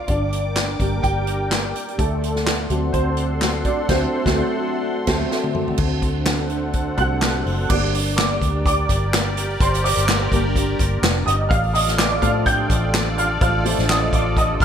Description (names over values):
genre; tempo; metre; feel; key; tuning
piano-driven pop; 126 BPM; 4/4; swing 56% on 16ths; G minor; A4 = 440 Hz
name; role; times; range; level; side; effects
warm upright piano; accompaniment; 0.0-14.6 s; F3 to G6; -22 LUFS; equal; ensemble chorus
sweeping resonant pad; sustained chords; 0.0-14.6 s; D3 to D6; -28 LUFS; equal; chorus
vintage muted fingered electric bass; bass; 0.1-14.6 s; F1 to A2; -23 LUFS; equal; none
unplugged drum kit; drums; 0.1-14.6 s; crash cymbal, handclaps, hi-hat, kick drum, snare drum, toms; -22 LUFS; equal; none
room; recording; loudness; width
light reverb, small room ambience; bright 1980s-style digital production; -17 LUFS; side -8 dB against mid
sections
0.0-5.8 A section; 5.8-7.7 B section; 7.7-14.6 C section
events
upright piano solo 0.0-5.8, 5.8-7.7, 7.7-14.6; band accent 3.9-5.8; drum fill 5.3-5.8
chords
0.1 Gm; 2.0 D7; 7.7 Gm; 11.5 Dm/A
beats
| 0.09 0.56 1.04 1.51 | 1.99 2.47 2.94 3.42 | 3.89 4.37 4.85 5.32 | 5.80 6.27 6.75 7.22 | 7.70 8.18 8.65 9.13 | 9.60 10.08 10.55 11.03 | 11.51 11.98 12.46 12.93 | 13.41 13.88 14.36